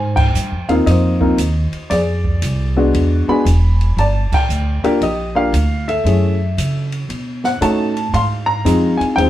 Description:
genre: jazz piano trio.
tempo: 116 BPM.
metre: 4/4.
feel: swing 66% on 8ths.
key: unclear.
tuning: A4 = 440 Hz.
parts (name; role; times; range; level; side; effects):
dark baby grand piano; melody; 0.0-9.3 s; Ab3 to C6; -17 LUFS; left 1 dB; none.
upright bass; bass; 0.0-9.3 s; E1 to Db3; -17 LUFS; equal; none.
open jazz drum kit; drums; 0.2-9.3 s; crash cymbal, hi-hat, kick drum, ride cymbal, snare drum; -24 LUFS; right 2 dB; none.
room: moderate club reverb, RT60 0.6 s.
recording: heard from further back in the room.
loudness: -14 LUFS.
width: side -13 dB against mid.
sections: 0.0-9.3 A section.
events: band accent 0.1, 4.2.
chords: 0.0 Ab6; 1.9 Fm; 2.9 E9; 4.0 Gm9; 6.1 Gbm7; 7.1 B9; 8.1 Dbmaj9 (rootless).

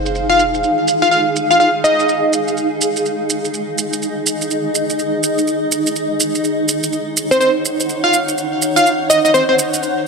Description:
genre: bass house.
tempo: 124 BPM.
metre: 4/4.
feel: swing 62% on 16ths.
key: F phrygian.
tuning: A4 = 440 Hz.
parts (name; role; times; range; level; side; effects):
sub drop; sound effects; 0.0-0.6 s; none; -27 LUFS; equal; none.
granular cloud pad; texture; 0.0-10.1 s; Eb4 to Gb5; -18 LUFS; equal; built-in reverb.
shaker; drums; 0.1-9.9 s; none; -21 LUFS; right 6 dB; low-pass filter on hats, low-pass filter on perc, low-pass filter on cymbals, low-pass filter on snare, low-pass filter on room.
plucky unison lead; melody; 0.3-2.3, 7.3-9.5 s; C5 to F5; -14 LUFS; equal; digital delay.
room: wet lush hall reverb, RT60 1.9 s.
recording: none.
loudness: -14 LUFS.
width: side -4 dB against mid.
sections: 0.0-10.1 A section.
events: impact 0.0-0.6.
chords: 0.0 Fm7; 6.4 Ebm7.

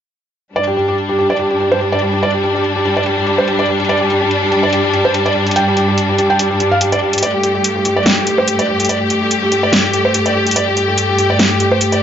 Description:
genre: heavy wobble dubstep.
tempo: 144 BPM.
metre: 4/4.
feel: swing 55% on 16ths, half-time.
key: unclear.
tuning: A4 = 440 Hz.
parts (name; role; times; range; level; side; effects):
felt-muted upright piano; melody; 0.6-12.0 s; G4 to G5; -15 LUFS; right 1 dB; dub echo.
clear studio string section; sustained chords; 0.6-12.0 s; G2 to G4; -16 LUFS; left 1 dB; none.
dubstep drum kit; drums; 0.6-12.0 s; hi-hat, snare drum; -16 LUFS; equal; low-pass filter on hats, low-pass filter on snare.
room: moderate digital room reverb, RT60 1.2 s, small room ambience.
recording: nothing above 7.6 kHz.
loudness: -12 LUFS.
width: side -9 dB against mid.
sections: 0.6-12.0 A section.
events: none.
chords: 0.6 G5.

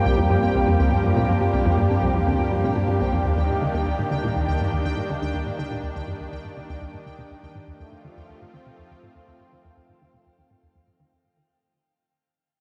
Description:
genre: ambient, sequencer-driven space music.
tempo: 122 BPM.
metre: 4/4.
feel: straight.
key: unclear.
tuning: A4 = 441 Hz.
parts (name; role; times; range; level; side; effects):
lush unison pad; sustained chords; 0.0-11.1 s; Eb3 to G4; -28 LUFS; equal; chorus, shimmer reverb.
resonant blip pluck; riff; 0.0-11.1 s; C2 to Eb3; -25 LUFS; equal; chorus, analog delay.
pulsing gated texture; texture; 0.0-11.1 s; G5; -36 LUFS; equal; chorus, built-in reverb, shimmer reverb.
thumb-piano-like synth pluck; arpeggios; 0.1-3.2 s; C4 to G4; -33 LUFS; equal; chorus, analog delay, shimmer reverb.
room: wet plate reverb, RT60 2.7 s.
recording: dreamy mix soaked in reverb.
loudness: -22 LUFS.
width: mono.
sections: 0.0-11.1 A section.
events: fade-out 0.0-11.1; filter sweep on synth arpeggio sound 0.0-11.1.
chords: 0.0 Gm7; 3.3 Ebmaj7; 7.2 F7.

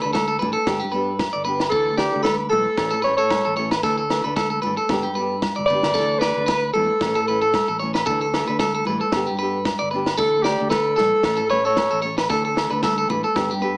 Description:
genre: highlife guitar band.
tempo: 114 BPM.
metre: 4/4.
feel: swing 55% on 16ths.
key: unclear.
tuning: A4 = 438 Hz.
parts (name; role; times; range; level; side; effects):
nylon-string guitar; accompaniment; 0.0-13.8 s; E3 to A4; -28 LUFS; equal; none.
clean electric guitar; arpeggios; 0.0-13.8 s; G4 to D5; -22 LUFS; equal; tape echo.
fingered electric bass; bass; 0.0-13.8 s; G1 to A2; -31 LUFS; equal; none.
compact cocktail drum kit; drums; 0.1-13.5 s; kick drum, snare drum; -26 LUFS; equal; none.
agogo bells; percussion; 0.2-13.5 s; none; -29 LUFS; equal; none.
congas; percussion; 0.2-13.7 s; none; -30 LUFS; equal; none.
warm alto saxophone; melody; 1.7-12.0 s; G4 to D5; -20 LUFS; equal; none.
room: moderate studio reverb, RT60 0.6 s.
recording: small speaker sound.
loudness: -18 LUFS.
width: side -32 dB against mid.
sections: 0.0-13.8 A section.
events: drum fill 5.6-6.0.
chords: 0.0 Dsus2; 0.7 G; 1.7 Dsus2; 2.8 A; 3.8 Dsus2; 4.9 G; 6.0 Dsus2; 7.0 A; 8.1 Dsus2; 9.1 G; 10.2 Dsus2; 11.2 A; 12.3 Dsus2.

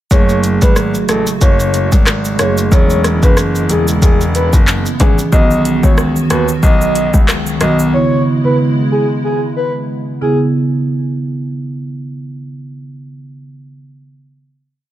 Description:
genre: dancehall.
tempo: 92 BPM.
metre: 4/4.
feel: swing 56% on 16ths.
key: C# minor.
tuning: A4 = 440 Hz.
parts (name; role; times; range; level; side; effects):
breathy flute-like synth lead; melody; 0.1-10.4 s; G#4 to D#5; -19 LUFS; equal; chorus, ping-pong delay.
marimba with soft mallets; accompaniment; 0.1-10.4 s; C#3 to G#4; -17 LUFS; right 2 dB; none.
hollow soft pad; sustained chords; 0.1-10.5 s; C#3 to F#4; -23 LUFS; equal; ensemble chorus, sidechain pumping.
clear baby grand piano; bass; 0.1-7.9 s; E1 to D#2; -17 LUFS; left 1 dB; none.
afro-pop drum kit; drums; 0.1-7.9 s; handclaps, hi-hat, kick drum, rim click, shaker; -12 LUFS; equal; overdrive.
maracas and timbales; percussion; 0.1-5.3 s; none; -25 LUFS; equal; none.
room: small room ambience.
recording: none.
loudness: -11 LUFS.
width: side -13 dB against mid.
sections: 0.1-10.5 chorus.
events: none.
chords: 0.1 F#madd9; 2.7 E6; 5.3 B; 7.9 C#m7.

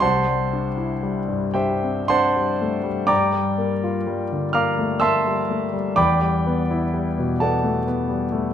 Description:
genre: classical, impressionist solo piano.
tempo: 53-66 BPM.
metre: 3/4.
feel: rubato.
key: unclear.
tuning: A4 = 440 Hz.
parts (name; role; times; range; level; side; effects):
warm concert grand piano; solo; 0.0-8.5 s; C2 to F6; -19 LUFS; equal; none.
room: moderate recital hall reverb, RT60 1.4 s.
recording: dark, warm production.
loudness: -19 LUFS.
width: side -9 dB against mid.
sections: 0.0-8.5 A section.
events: none.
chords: 0.0 Cadd9; 3.1 Gm9; 6.0 Em7.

